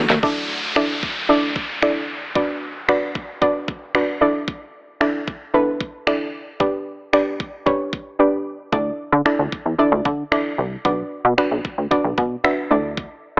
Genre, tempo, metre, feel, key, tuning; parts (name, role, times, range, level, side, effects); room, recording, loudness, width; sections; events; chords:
dance-pop; 113 BPM; 4/4; straight; D major; A4 = 439 Hz
soft round pluck; accompaniment; 0.0-13.3 s; D4 to E5; -19 LUFS; equal; chorus, sidechain pumping
plucky analog bass; bass; 0.0-0.2, 8.7-13.4 s; B1 to D3; -19 LUFS; equal; sidechain pumping
pop drum kit; drums; 0.1-13.1 s; finger snaps, kick drum, snare drum; -24 LUFS; equal
downlifter; sound effects; 0.2-4.5 s; -26 LUFS; equal
light reverb; AM radio sound; -18 LUFS; side -26 dB against mid
0.2-13.4 A section
drum fill 0.0; silent gap 8.2-8.7
0.2 Dsus2; 2.4 Bm; 4.2 Dsus2; 6.6 G; 8.7 Dsus2; 10.8 Bm; 12.7 Dsus2